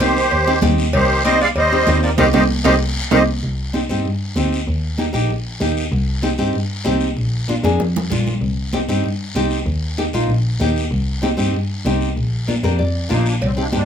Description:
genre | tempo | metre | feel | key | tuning
latin, cumbia | 192 BPM | 4/4 | straight | C minor | A4 = 440 Hz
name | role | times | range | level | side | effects
musette accordion | melody | 0.0-3.2, 13.1-13.8 s | G3 to F5 | -17 LUFS | right 2 dB | none
growling tenor saxophone | second line | 0.0-3.2 s | Eb3 to Ab3 | -23 LUFS | left 4 dB | none
nylon-string guitar | accompaniment | 0.0-13.8 s | Bb3 to F5 | -21 LUFS | equal | none
rich double bass | bass | 0.0-13.8 s | Bb1 to G2 | -20 LUFS | equal | none
congas | percussion | 0.0-13.8 s | none | -24 LUFS | right 2 dB | none
cowbell and timbales | percussion | 0.0-3.2, 13.4-13.6 s | none | -25 LUFS | right 5 dB | none
guiro | percussion | 0.0-13.8 s | none | -30 LUFS | left 3 dB | none
room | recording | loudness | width
light reverb | close, detailed microphones | -16 LUFS | side -8 dB against mid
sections
0.0-3.4 A section; 3.4-13.4 B section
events
drum fill 2.2-3.4, 7.6-8.4; band accent 2.2-3.4; nylon-string guitar fill 2.5-3.4, 12.5-13.4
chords
0.0 Cm; 4.7 Eb; 5.9 Cm; 7.2 Bb; 8.4 Cm; 9.7 Eb; 10.9 Cm; 12.2 Bb

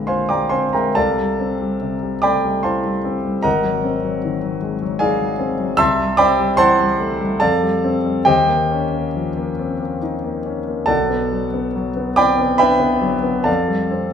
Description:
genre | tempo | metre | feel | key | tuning
classical, impressionist solo piano | 66-79 BPM | 3/4 | rubato | unclear | A4 = 444 Hz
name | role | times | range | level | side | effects
warm concert grand piano | solo | 0.0-14.1 s | Ab1 to E6 | -16 LUFS | equal | none
room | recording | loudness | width
wet recital hall reverb, RT60 1.4 s | none | -16 LUFS | side -8 dB against mid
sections
0.0-14.1 A section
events
none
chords
0.0 Bb9; 1.0 C6; 3.5 Ab9; 5.8 Cadd9; 7.4 Fadd9; 8.3 Eb9; 10.9 Bm7; 13.5 Fadd9

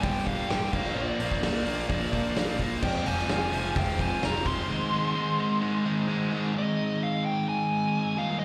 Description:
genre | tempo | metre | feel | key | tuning
quiet-loud alternative rock | 129 BPM | 4/4 | straight | unclear | A4 = 440 Hz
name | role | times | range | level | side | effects
dark smooth lead guitar | melody | 0.0-8.4 s | D5 to C6 | -34 LUFS | equal | overdrive, slapback echo, digital delay
biting overdriven guitar | riff | 0.0-6.5 s | F2 to Bb3 | -33 LUFS | equal | none
thick fuzz guitar | riff | 0.0-8.4 s | F2 to Eb4 | -33 LUFS | equal | distortion
fuzz picked electric bass | bass | 0.0-4.6 s | F1 to Bb1 | -36 LUFS | equal | overdrive
loose indie drum kit | drums | 0.0-4.6 s | crash cymbal, hi-hat, kick drum, snare drum | -34 LUFS | equal | none
tonewheel organ | sustained chords | 2.8-8.4 s | C4 to Ab5 | -43 LUFS | equal | slow rotary speaker
room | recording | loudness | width
little or no reverb | live gig heard through the venue's PA, recital hall reverb | -28 LUFS | mono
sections
0.0-6.5 A section; 6.5-8.4 B section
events
none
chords
0.0 Gm; 0.7 Bb; 2.8 Fm; 4.7 Ab

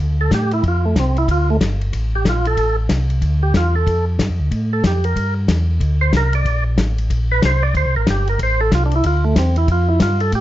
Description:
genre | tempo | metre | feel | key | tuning
soul jazz organ trio | 186 BPM | 4/4 | swing 63% on 8ths | D minor | A4 = 440 Hz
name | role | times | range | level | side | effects
mellow tonewheel organ | bass | 0.0-10.4 s | G1 to A2 | -17 LUFS | equal | slow rotary speaker
percussive tonewheel organ | melody | 0.2-10.4 s | A3 to D5 | -20 LUFS | right 2 dB | slow rotary speaker, plate reverb
warm soul drum kit | drums | 0.3-10.4 s | hi-hat, kick drum, ride cymbal, snare drum | -21 LUFS | left 2 dB | none
room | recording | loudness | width
light reverb | dark, warm production, nothing above 7.7 kHz | -15 LUFS | side -14 dB against mid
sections
0.0-10.4 A section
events
tonewheel organ solo 0.0-10.4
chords
0.0 Dm7; 5.2 Gm; 7.7 Dm7

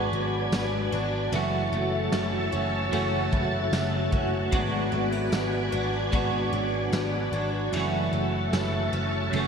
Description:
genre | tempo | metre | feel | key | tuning
dream pop | 75 BPM | 4/4 | straight | F# minor | A4 = 440 Hz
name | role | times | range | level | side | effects
clean electric guitar | accompaniment | 0.0-9.5 s | F#2 to F#4 | -30 LUFS | right 3 dB | tremolo, analog chorus
ensemble organ-string | sustained chords | 0.0-9.5 s | F#4 to A5 | -30 LUFS | equal | ensemble chorus
picked twelve-string acoustic guitar | arpeggios | 0.0-9.5 s | E3 to D4 | -32 LUFS | left 2 dB | ensemble chorus, digital delay
picked electric bass | bass | 0.0-9.5 s | F#1 to G#1 | -31 LUFS | equal | none
raw garage drum kit | drums | 0.5-9.5 s | kick drum, ride cymbal, snare drum, tambourine | -33 LUFS | equal | gated reverb
room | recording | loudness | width
moderate lush hall reverb, RT60 2.8 s | bright 1980s-style digital production | -24 LUFS | side -6 dB against mid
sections
0.0-9.5 A section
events
none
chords
0.0 G#m7b5; 1.3 F#m7; 4.5 G#m7b5; 7.7 F#m7

